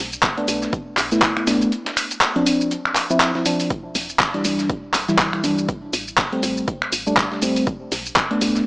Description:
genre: deep house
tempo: 121 BPM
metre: 4/4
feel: swing 57% on 16ths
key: E minor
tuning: A4 = 439 Hz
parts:
  - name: woody FM bass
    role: bass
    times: 0.0-8.6 s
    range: D1 to B1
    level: -32 LUFS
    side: equal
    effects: sidechain pumping
  - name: deep house drum kit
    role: drums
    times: 0.1-8.6 s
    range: finger snaps, handclaps, hi-hat, shaker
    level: -20 LUFS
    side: equal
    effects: none
  - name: dusty soul sampler-style drum kit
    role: drums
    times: 0.2-8.7 s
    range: hi-hat, snare drum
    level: -31 LUFS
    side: equal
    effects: none
  - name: electronic kick drum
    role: drums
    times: 0.2-8.3 s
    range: none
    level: -26 LUFS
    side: equal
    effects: none
  - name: mellow FM electric piano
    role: stabs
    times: 0.4-8.7 s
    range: E3 to E4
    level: -21 LUFS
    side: equal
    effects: chorus, phaser, sidechain pumping, tape echo
room: light reverb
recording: small speaker sound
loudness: -18 LUFS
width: side -25 dB against mid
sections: 0.0-8.7 A section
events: none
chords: 0.0 Bm7; 1.7 Dm7; 3.7 Em7; 5.7 Am7; 7.7 Bm7

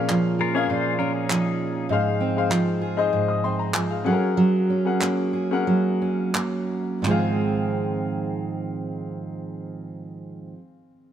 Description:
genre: acoustic pop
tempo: 84-99 BPM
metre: 4/4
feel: straight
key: Ab mixolydian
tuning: A4 = 440 Hz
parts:
  - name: fingerpicked steel-string acoustic guitar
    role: accompaniment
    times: 0.0-10.6 s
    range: Ab2 to Ab4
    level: -23 LUFS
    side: right 3 dB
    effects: none
  - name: warm upright piano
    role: accompaniment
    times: 0.0-11.1 s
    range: C4 to Eb6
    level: -27 LUFS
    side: left 6 dB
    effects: none
  - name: group handclap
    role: percussion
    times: 0.1-7.4 s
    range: none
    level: -28 LUFS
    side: right 1 dB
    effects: none
  - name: pedal steel guitar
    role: second line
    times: 0.4-1.9 s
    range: Eb4 to Db5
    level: -29 LUFS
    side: left 6 dB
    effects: none
room: moderate plate reverb, RT60 2.5 s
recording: none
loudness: -21 LUFS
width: side -10 dB against mid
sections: 0.0-7.0 A section; 7.0-9.9 B section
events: slowing down 1.9-7.0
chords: 0.0 Bbm7; 1.9 Ab6; 4.0 Gbadd9; 7.0 Ab6

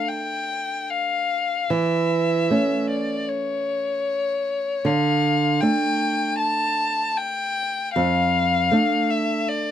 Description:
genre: romantic duo for violin and classical guitar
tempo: 77 BPM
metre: 4/4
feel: rubato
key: D minor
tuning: A4 = 444 Hz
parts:
  - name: warm violin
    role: melody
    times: 0.0-9.7 s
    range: C#5 to A5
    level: -23 LUFS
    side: left 4 dB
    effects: none
  - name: nylon-string guitar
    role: accompaniment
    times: 0.0-9.7 s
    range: F2 to D4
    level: -23 LUFS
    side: right 3 dB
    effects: none
room: light reverb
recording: close, detailed microphones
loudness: -20 LUFS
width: side -10 dB against mid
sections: 0.0-9.7 A section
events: none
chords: 0.0 Dm; 1.7 A/E; 4.8 Dm; 8.0 Dm/F

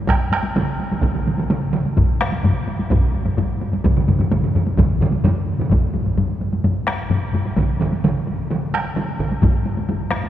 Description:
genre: japanese traditional, taiko drum ensemble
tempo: 128 BPM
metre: 4/4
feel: straight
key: none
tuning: none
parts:
  - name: taiko ensemble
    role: percussion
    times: 0.1-10.3 s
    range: none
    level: -24 LUFS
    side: equal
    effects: none
  - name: taiko ensemble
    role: percussion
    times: 0.1-9.3 s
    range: none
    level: -23 LUFS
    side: right 3 dB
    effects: none
  - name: taiko ensemble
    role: percussion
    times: 0.1-9.5 s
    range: none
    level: -23 LUFS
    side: right 1 dB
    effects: none
  - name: taiko ensemble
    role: percussion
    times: 2.0-10.2 s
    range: none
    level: -22 LUFS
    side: left 2 dB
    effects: none
room: wet cathedral reverb, RT60 6.2 s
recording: recorded in a church or concert hall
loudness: -17 LUFS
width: side -12 dB against mid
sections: 0.0-5.7 A section; 5.7-10.3 B section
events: none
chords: none

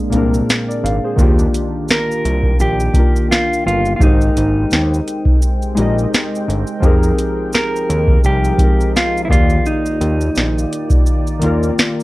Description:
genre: lo-fi hip hop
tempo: 85 BPM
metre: 4/4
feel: swing 56% on 16ths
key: Eb major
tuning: A4 = 440 Hz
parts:
  - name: warbly lo-fi synth keys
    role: accompaniment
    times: 0.0-12.0 s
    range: Bb2 to F5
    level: -20 LUFS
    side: left 2 dB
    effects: chorus, cassette tape, low-pass filter
  - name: deep dark ambient pad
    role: sustained chords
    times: 0.0-12.0 s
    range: Eb3 to G5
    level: -27 LUFS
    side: right 1 dB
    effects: chorus, built-in reverb, low-pass filter
  - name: fat analog bass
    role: bass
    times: 0.1-11.7 s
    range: G1 to F2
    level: -18 LUFS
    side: equal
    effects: none
  - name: booming analog drum machine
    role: drums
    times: 0.1-12.0 s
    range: hi-hat, kick drum, shaker, snare drum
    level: -15 LUFS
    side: equal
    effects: none
  - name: mellow electric guitar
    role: melody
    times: 1.9-11.7 s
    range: Eb4 to Bb4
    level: -19 LUFS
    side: right 1 dB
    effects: spring reverb, low-pass filter
room: light reverb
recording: none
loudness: -13 LUFS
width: side -19 dB against mid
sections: 0.0-12.0 A section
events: break 0.0-1.2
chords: 0.0 Bb9; 1.2 Ebmaj7; 4.0 Abmaj9; 6.8 Fm11; 9.3 Ebmaj7

